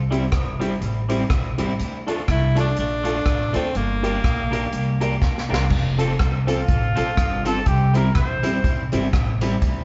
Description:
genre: ska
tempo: 123 BPM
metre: 4/4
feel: swing 58% on 8ths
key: F major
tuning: A4 = 440 Hz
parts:
  - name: upright bass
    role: bass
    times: 0.0-9.8 s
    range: F1 to D2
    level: -26 LUFS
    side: equal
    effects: none
  - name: electric guitar at the edge of break-up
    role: accompaniment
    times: 0.1-9.6 s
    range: G3 to A4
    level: -30 LUFS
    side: equal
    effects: spring reverb, tape echo
  - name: honky-tonk upright piano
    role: stabs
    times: 0.1-9.5 s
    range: C4 to Bb4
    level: -31 LUFS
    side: equal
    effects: none
  - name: swinging big-band drum kit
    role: drums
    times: 0.1-9.8 s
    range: crash cymbal, hi-hat, kick drum, rim click, snare drum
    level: -26 LUFS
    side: equal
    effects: none
  - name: clear tenor saxophone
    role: melody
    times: 2.3-5.2 s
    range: Bb3 to E4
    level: -27 LUFS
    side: equal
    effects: none
  - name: tambourine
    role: percussion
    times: 6.0-9.5 s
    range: none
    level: -49 LUFS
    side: equal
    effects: none
  - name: warm trumpet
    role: melody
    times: 6.5-8.9 s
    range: F4 to C5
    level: -28 LUFS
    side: equal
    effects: none
room: moderate studio reverb, RT60 0.8 s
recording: band playing live in one room, nothing above 7.7 kHz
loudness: -21 LUFS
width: mono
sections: 0.0-5.7 A section; 5.7-9.8 B section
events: drum fill 5.2-5.7; trumpet solo 5.7-9.8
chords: 0.0 C; 1.8 Dm; 3.7 Gm; 5.7 F; 7.7 C

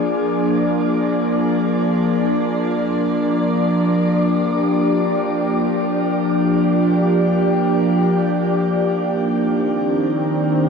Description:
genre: ambient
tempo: free time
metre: none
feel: none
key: C minor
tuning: A4 = 442 Hz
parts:
  - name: evolving wavetable pad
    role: solo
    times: 0.0-10.7 s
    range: Eb3 to D5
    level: -16 LUFS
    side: equal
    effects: chorus, built-in reverb, ping-pong delay
room: wet shimmer reverb, RT60 7.8 s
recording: dark, warm production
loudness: -16 LUFS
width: side -5 dB against mid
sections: 0.0-8.7 A section; 8.7-10.7 B section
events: none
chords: 0.0 Bb7; 2.1 Gm7; 8.7 Cmadd9

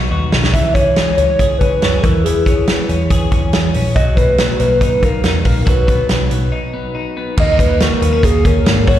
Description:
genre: jangly indie pop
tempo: 140 BPM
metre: 4/4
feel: straight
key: unclear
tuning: A4 = 441 Hz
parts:
  - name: twelve-string electric guitar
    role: arpeggios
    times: 0.0-9.0 s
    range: E3 to G#4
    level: -21 LUFS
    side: left 1 dB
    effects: plate reverb, slapback echo
  - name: vintage muted picked electric bass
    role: bass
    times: 0.0-9.0 s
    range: A#1 to G#2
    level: -17 LUFS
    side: equal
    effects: none
  - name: loose indie drum kit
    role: drums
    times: 0.3-9.0 s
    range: crash cymbal, hi-hat, kick drum, snare drum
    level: -16 LUFS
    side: equal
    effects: none
  - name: warbly nostalgic lead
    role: melody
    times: 0.5-9.0 s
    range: G#4 to E5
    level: -17 LUFS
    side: equal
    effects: chorus, plate reverb, slapback echo, tape echo
room: light reverb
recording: live gig heard through the venue's PA, recital hall reverb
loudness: -12 LUFS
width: side -12 dB against mid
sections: 0.0-7.4 A section; 7.4-9.0 B section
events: drum fill 0.0-0.5; break 6.5-7.4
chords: 0.0 B; 0.5 C#m; 2.0 E6; 4.0 Bmaj7; 5.7 B; 7.4 D#m7

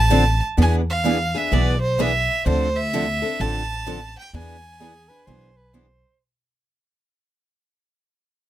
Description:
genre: acoustic string swing (jazz manouche)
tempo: 128 BPM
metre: 4/4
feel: swing 63% on 8ths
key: unclear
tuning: A4 = 440 Hz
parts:
  - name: bright violin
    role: melody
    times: 0.0-5.7 s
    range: C5 to A5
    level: -23 LUFS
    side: right 2 dB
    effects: none
  - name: upright bass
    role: bass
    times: 0.0-6.0 s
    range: A1 to E2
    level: -21 LUFS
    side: equal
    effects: none
  - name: picked steel-string acoustic guitar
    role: accompaniment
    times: 0.1-5.9 s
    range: D3 to A4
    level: -26 LUFS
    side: left 7 dB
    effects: none
  - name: picked steel-string acoustic guitar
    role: accompaniment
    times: 0.1-5.9 s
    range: D3 to B4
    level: -25 LUFS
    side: right 6 dB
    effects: none
  - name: breathy soprano saxophone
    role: second line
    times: 4.8-6.2 s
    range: G#4 to C5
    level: -56 LUFS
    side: right 3 dB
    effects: none
room: little or no reverb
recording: close, detailed microphones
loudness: -18 LUFS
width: side -13 dB against mid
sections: 0.0-6.2 A section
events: fade-out 0.0-6.2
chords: 0.0 Dm7; 0.6 E7b9; 2.5 Dm9; 4.3 E7b13

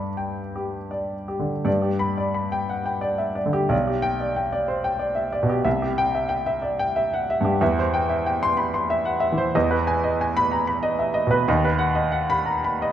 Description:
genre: classical, romantic character piece for solo piano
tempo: 77-97 BPM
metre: 3/4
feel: rubato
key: G major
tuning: A4 = 440 Hz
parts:
  - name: clear baby grand piano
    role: solo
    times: 0.0-12.9 s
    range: B1 to C6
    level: -21 LUFS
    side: equal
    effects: none
room: moderate recital hall reverb, RT60 1.4 s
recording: none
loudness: -21 LUFS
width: side -10 dB against mid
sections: 0.0-1.7 A section; 1.7-12.9 B section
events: none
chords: 0.0 G; 3.7 G/B; 5.7 C; 7.6 C/E; 9.5 Emaj7; 11.5 B/D#

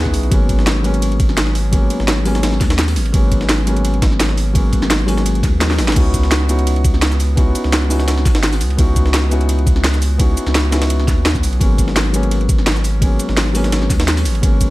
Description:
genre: liquid drum and bass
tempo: 170 BPM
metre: 4/4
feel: swing 53% on 16ths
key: C# dorian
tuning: A4 = 440 Hz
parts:
  - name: felt-muted upright piano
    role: accompaniment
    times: 0.0-14.7 s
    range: F#3 to G#4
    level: -20 LUFS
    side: left 1 dB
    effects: digital delay
  - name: saturated sub bass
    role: bass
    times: 0.0-14.7 s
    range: G#1 to D#2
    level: -17 LUFS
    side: equal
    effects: none
  - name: breakbeat sampler-style drum kit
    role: drums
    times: 0.1-14.7 s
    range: hi-hat, ride cymbal, snare drum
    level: -25 LUFS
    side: right 1 dB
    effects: high-pass filter on cymbals, high-pass filter on snare, high-pass filter on hats
  - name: drum and bass drum kit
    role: drums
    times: 0.1-14.7 s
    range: crash cymbal, hi-hat, shaker, snare drum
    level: -20 LUFS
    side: equal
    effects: overdrive
  - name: electronic kick drum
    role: drums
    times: 0.1-14.7 s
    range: none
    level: -15 LUFS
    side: equal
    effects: overdrive
room: light reverb, digital ambience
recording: dark, warm production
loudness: -13 LUFS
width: side -18 dB against mid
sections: 0.0-14.7 A section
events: kick drops out 5.6-6.0; drum fill 5.7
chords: 0.3 G#m11; 6.0 C#m11; 11.6 G#m11

